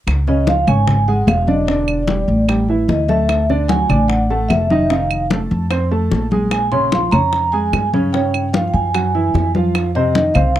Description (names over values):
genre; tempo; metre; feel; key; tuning
Afro-Cuban jazz; 149 BPM; 4/4; straight; unclear; A4 = 440 Hz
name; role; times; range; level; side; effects
upright bass; bass; 0.1-10.6 s; Fb1 to G2; -18 LUFS; equal; none
bongos; percussion; 0.1-10.6 s; none; -26 LUFS; left 7 dB; none
claves; percussion; 0.1-10.6 s; none; -25 LUFS; right 10 dB; none
congas; percussion; 0.1-10.6 s; none; -22 LUFS; left 2 dB; none
vibraphone with soft mallets; melody; 0.3-10.6 s; D5 to C6; -19 LUFS; equal; none
dark baby grand piano; accompaniment; 0.3-10.6 s; C3 to D6; -19 LUFS; right 2 dB; none
room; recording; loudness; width
little or no reverb; dry, close 1970s-style studio recording; -14 LUFS; side -12 dB against mid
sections
0.1-10.6 A section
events
none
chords
0.1 Db; 1.7 Em7; 2.5 A5; 3.3 Dadd9; 4.9 F7; 6.5 Bbm7; 8.1 Dbadd11; 8.9 Gbsus2; 9.7 F7(no3)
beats
| 0.07 0.47 0.88 1.28 | 1.68 2.08 2.49 2.89 | 3.29 3.70 4.10 4.50 | 4.91 5.31 5.71 6.12 | 6.52 6.92 7.33 7.73 | 8.13 8.54 8.94 9.35 | 9.75 10.15 10.56